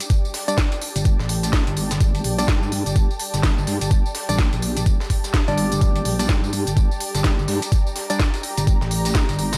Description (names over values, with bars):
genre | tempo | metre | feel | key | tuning
bass house | 126 BPM | 4/4 | swing 60% on 16ths | G minor | A4 = 440 Hz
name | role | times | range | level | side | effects
breakbeat sampler-style drum kit | drums | 0.0-9.6 s | hi-hat, snare drum, tambourine | -36 LUFS | equal | high-pass filter on snare, high-pass filter on perc, high-pass filter on hats, high-pass filter on room
garage drum kit | drums | 0.0-9.6 s | hi-hat, snare drum, tambourine | -29 LUFS | equal | none
granular cloud pad | texture | 0.0-9.6 s | G4 to Bb5 | -33 LUFS | equal | built-in reverb, sidechain pumping
electronic kick drum | drums | 0.1-9.3 s | none | -21 LUFS | equal | none
percussive organ stab | stabs | 0.5-8.2 s | G3 to D5 | -28 LUFS | equal | subtle chorus, sidechain pumping, delay
vowel-sweep wobble bass | bass | 1.0-9.6 s | G1 to G2 | -26 LUFS | equal | chorus, tube saturation, sidechain pumping
room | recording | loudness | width
digital ambience | none | -21 LUFS | mono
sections
0.0-9.6 A section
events
none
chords
0.0 G5